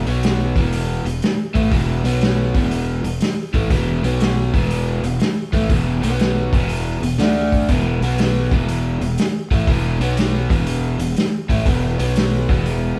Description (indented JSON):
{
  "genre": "blues rock power trio and southern rock",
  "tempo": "121 BPM",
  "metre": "4/4",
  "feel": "swing 67% on 8ths",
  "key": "unclear",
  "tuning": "A4 = 440 Hz",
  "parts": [
    { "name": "overdriven electric guitar", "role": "riff", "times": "0.0-13.0 s", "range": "E2 to D4", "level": "-24 LUFS", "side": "equal", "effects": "none" },
    { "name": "fuzz fingered electric bass", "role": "bass", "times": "0.0-13.0 s", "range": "E1 to D2", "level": "-24 LUFS", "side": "equal", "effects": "overdrive" },
    { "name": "vintage drum kit", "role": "drums", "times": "0.1-12.8 s", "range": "hi-hat, kick drum, snare drum", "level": "-22 LUFS", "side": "equal", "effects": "none" }
  ],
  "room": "moderate stone room reverb, RT60 0.9 s",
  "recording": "band playing live in one room",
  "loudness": "-19 LUFS",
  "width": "mono",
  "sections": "0.0-13.0 A section",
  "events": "none",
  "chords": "0.5 E5; 2.0 B5; 2.5 E5; 4.0 B5; 4.5 E5; 5.9 B5; 6.4 E5; 7.2 D5; 7.7 E5; 7.9 B5; 8.4 E5; 9.9 B5; 10.4 E5; 11.9 B5; 12.4 E5"
}